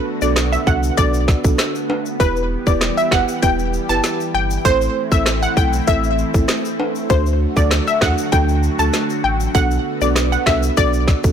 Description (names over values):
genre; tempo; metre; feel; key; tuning
dancehall; 98 BPM; 4/4; straight; E minor; A4 = 440 Hz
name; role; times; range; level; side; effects
buzzing marimba with soft mallets; accompaniment; 0.0-11.3 s; A3 to B4; -23 LUFS; right 4 dB; none
lush unison pad; sustained chords; 0.0-11.3 s; D3 to G4; -26 LUFS; equal; chorus, phaser, sidechain pumping
analog pluck; melody; 0.2-11.2 s; B4 to A5; -20 LUFS; left 2 dB; chorus, digital delay
saturated sub bass; bass; 0.2-11.3 s; E1 to E2; -21 LUFS; equal; none
tube shaker and timbales; percussion; 0.2-11.3 s; none; -30 LUFS; left 3 dB; none
island pop drum kit; drums; 0.4-11.3 s; hi-hat, kick drum, rim click, snare drum; -18 LUFS; equal; none
room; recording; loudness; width
light reverb, digital ambience; blown-out, overdriven recording, overdrive; -15 LUFS; side -8 dB against mid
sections
0.0-11.3 A section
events
none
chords
0.0 Bm7; 2.2 Em; 4.7 Am; 7.1 D; 9.5 Bm7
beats
0.36 0.98 1.59 | 2.20 2.81 3.43 4.04 | 4.65 5.26 5.87 6.49 | 7.10 7.71 8.32 8.94 | 9.55 10.16 10.77